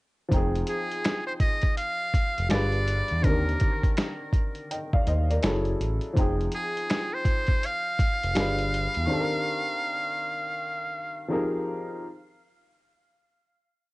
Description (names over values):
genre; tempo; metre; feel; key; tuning
lo-fi hip hop; 82 BPM; 4/4; swing 62% on 16ths; F dorian; A4 = 439 Hz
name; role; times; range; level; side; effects
warm upright piano; accompaniment; 0.3-12.0 s; D3 to G5; -30 LUFS; left 1 dB; cassette tape, low-pass filter, plate reverb
smooth gliding synth bass; bass; 0.3-9.1 s; F1 to E2; -27 LUFS; equal; none
lo-fi sampler-style drum kit; drums; 0.3-9.1 s; finger snaps, hi-hat, kick drum, snare drum; -25 LUFS; equal; cassette tape
trumpet with metal mute; melody; 0.7-11.3 s; Ab4 to F5; -29 LUFS; equal; low-pass filter, cassette tape, analog delay
room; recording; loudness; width
light reverb; home recording on cassette, nothing above 10.6 kHz; -24 LUFS; side -22 dB against mid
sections
0.3-12.0 A section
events
none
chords
0.3 Fm9; 2.5 G7b9; 3.2 Cm9/Eb; 5.4 Gbm9; 6.2 Fm9; 8.4 G7b9; 9.1 Cm9/Eb; 11.3 Fm11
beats
| 0.32 1.05 1.78 2.51 | 3.24 3.98 4.71 5.44 | 6.17 6.90 7.63 8.37 | 9.10 9.83 10.56 11.29